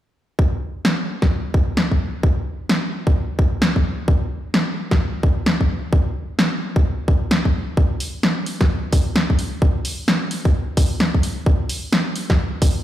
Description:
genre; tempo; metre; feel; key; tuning
UK garage, two-step garage; 130 BPM; 4/4; swing 62% on 16ths; none; none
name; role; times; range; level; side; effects
electronic kick drum; drums; 0.4-12.7 s; none; -18 LUFS; equal; none
punchy analog drum machine; drums; 0.8-12.7 s; hi-hat, snare drum; -21 LUFS; equal; overdrive
room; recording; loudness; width
moderate lush hall reverb, RT60 1.6 s; played on a big sound system in a bare room, large studio reverb; -17 LUFS; side -13 dB against mid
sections
0.4-12.8 A section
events
none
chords
none

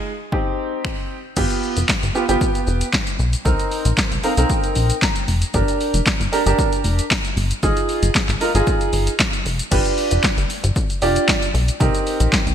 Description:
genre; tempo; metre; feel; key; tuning
dance-pop; 115 BPM; 4/4; straight; unclear; A4 = 438 Hz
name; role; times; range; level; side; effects
warm grand piano; accompaniment; 0.0-12.4 s; Ab3 to Bb5; -21 LUFS; right 2 dB; lush chorus, sidechain pumping
punchy analog drum machine; drums; 0.3-12.5 s; crash cymbal, finger snaps, handclaps, hi-hat, kick drum, shaker, snare drum; -20 LUFS; left 1 dB; none
plucky analog bass; bass; 1.4-12.5 s; F1 to C2; -19 LUFS; equal; sidechain pumping
room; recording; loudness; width
light reverb; bright 1980s-style digital production, faint mains hum; -17 LUFS; side -9 dB against mid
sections
0.0-1.4 A section; 1.4-9.7 B section; 9.7-12.5 C section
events
grand piano fill 4.0-5.5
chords
0.3 Cm; 1.4 G7; 3.5 Cm7; 5.5 Gm; 7.6 Fm7; 9.7 G7; 11.8 Cm7

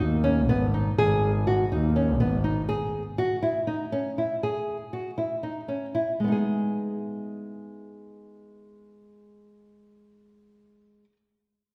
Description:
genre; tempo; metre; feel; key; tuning
contemporary instrumental, contemporary; 241 BPM (eighths); 7/8; straight; G# minor; A4 = 440 Hz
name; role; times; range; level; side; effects
nylon-string guitar; arpeggios; 0.0-11.2 s; G#3 to G#4; -29 LUFS; equal; none
rich double bass; bass; 0.0-2.7 s; G#1 to D#2; -27 LUFS; equal; none
room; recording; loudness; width
wet concert hall reverb, RT60 2.1 s; none; -26 LUFS; mono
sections
0.0-6.2 A section; 6.2-9.7 B section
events
none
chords
0.0 G#m; 2.7 F#5; 6.2 G#m

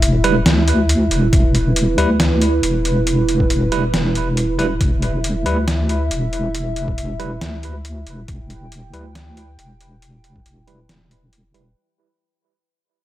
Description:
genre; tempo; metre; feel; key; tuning
deep dubstep; 138 BPM; 4/4; swing 54% on 16ths, half-time; E minor; A4 = 440 Hz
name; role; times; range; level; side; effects
dark analog pad; sustained chords; 0.0-11.8 s; E4 to G5; -23 LUFS; right 2 dB; chorus
deep soft wobble bass; bass; 0.0-11.7 s; E1 to D2; -19 LUFS; equal; chorus
trip hop sampler-style drum kit; drums; 0.0-11.6 s; hi-hat, snare drum; -21 LUFS; equal; overdrive, studio reverb
bell-like tine electric piano; stabs; 0.2-11.6 s; G3 to B4; -23 LUFS; right 2 dB; medium stereo tremolo, low-pass filter, dub echo
electronic kick drum; drums; 1.3-10.4 s; none; -18 LUFS; equal; overdrive, studio reverb
room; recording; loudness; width
light reverb, digital ambience; none; -15 LUFS; side -14 dB against mid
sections
0.0-11.8 A section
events
fade-out 0.0-11.8; filter sweep on tine electric piano 0.0-11.8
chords
0.0 Em

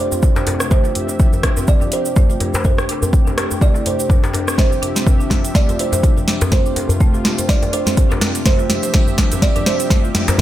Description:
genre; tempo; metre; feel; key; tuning
afro house; 124 BPM; 4/4; swing 56% on 16ths; D minor; A4 = 439 Hz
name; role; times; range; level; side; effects
kalimba; melody; 0.0-10.4 s; C5 to D5; -24 LUFS; right 4 dB; tape echo
warm analog pad; sustained chords; 0.0-10.4 s; C3 to E5; -27 LUFS; right 1 dB; chorus, tremolo, sidechain pumping
marimba with medium mallets; arpeggios; 0.0-10.4 s; A3 to C5; -24 LUFS; left 3 dB; sidechain pumping, low-pass filter, tape echo
afro-pop drum kit; drums; 0.1-10.4 s; cabasa, hi-hat, rim click, snare drum; -21 LUFS; right 1 dB; none
djembe; percussion; 0.1-10.4 s; none; -23 LUFS; left 1 dB; tape echo
warm 808-style bass; bass; 0.2-10.4 s; none; barely audible; none; none
electronic kick drum; drums; 0.2-10.4 s; none; -14 LUFS; equal; overdrive
room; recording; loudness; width
light reverb; echo-heavy mix; -14 LUFS; side -13 dB against mid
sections
0.0-10.4 A section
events
build-up 0.0-10.4; filter sweep on marimba 0.0-10.4; drum fill 4.6-10.4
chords
0.0 G9sus4; 0.7 Dm11; 2.6 Am7; 4.6 Dm11; 6.5 G9sus4; 8.5 Dm11

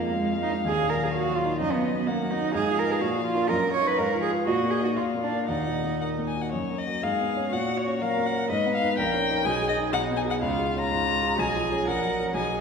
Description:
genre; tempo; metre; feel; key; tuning
quick classical-period movement for piano trio; 124 BPM; 2/4; rubato; Eb minor, F# major from 6.5 s; A4 = 439 Hz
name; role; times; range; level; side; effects
rich violin; melody; 0.0-12.6 s; C#5 to A#5; -29 LUFS; left 6 dB; none
rich cello; second line; 0.0-12.6 s; Ab3 to Db5; -27 LUFS; right 4 dB; none
clear concert grand piano; accompaniment; 0.0-12.6 s; A#1 to C#5; -28 LUFS; equal; none
room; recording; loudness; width
wet scoring stage reverb, RT60 1.9 s; heard from further back in the room; -23 LUFS; side -6 dB against mid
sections
0.0-6.5 A section; 6.5-12.6 B section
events
none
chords
0.0 Bb7/F; 0.6 Ebm; 1.6 Ebm/Gb; 2.5 Fm7b5/Ab; 3.0 Bb; 3.5 Ebm/Gb; 4.0 Fdim/Ab; 4.5 Ebm/Bb; 5.0 Bb; 5.5 Ebm; 6.5 F#; 7.0 C#7/G#; 7.5 F#/A#; 8.5 G#m; 9.0 D#7/A#; 9.5 G#m/B; 10.4 C#; 11.4 C#7/B; 11.9 F#/A#

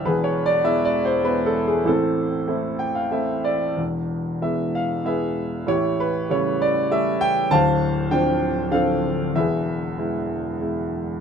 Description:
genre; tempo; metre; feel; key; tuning
classical, lyrical solo piano; 97 BPM; 3/4; uneven beats, rubato; unclear; A4 = 440 Hz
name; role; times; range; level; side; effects
warm concert grand piano; solo; 0.0-11.2 s; D1 to A5; -20 LUFS; equal; none
room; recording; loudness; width
light reverb; none; -20 LUFS; side -7 dB against mid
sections
0.0-3.8 A section; 3.8-11.2 B section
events
grand piano fill 2.5-3.8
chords
0.0 E; 1.9 Am; 3.8 E; 5.7 A7; 7.5 Dm7; 9.4 E

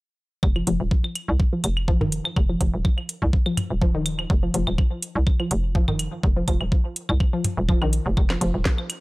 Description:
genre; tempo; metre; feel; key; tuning
minimal techno; 124 BPM; 4/4; swing 54% on 16ths; unclear; A4 = 441 Hz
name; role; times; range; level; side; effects
hollow knocking FM bass; bass; 0.4-8.6 s; Eb1 to C2; -24 LUFS; equal; sidechain pumping
electronic kick drum; drums; 0.4-8.8 s; none; -20 LUFS; equal; none
electronic claves and toms; percussion; 0.4-9.0 s; none; -29 LUFS; equal; none
resonant blip pluck; riff; 0.6-8.5 s; Eb3 to F3; -28 LUFS; left 1 dB; chorus, cassette tape, sidechain pumping, tape echo
garage drum kit; drums; 0.7-9.0 s; hi-hat, snare drum; -28 LUFS; equal; none
room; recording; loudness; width
digital ambience; dry, gritty hardware recording; -20 LUFS; side -22 dB against mid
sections
0.4-9.0 A section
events
none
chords
0.4 F5

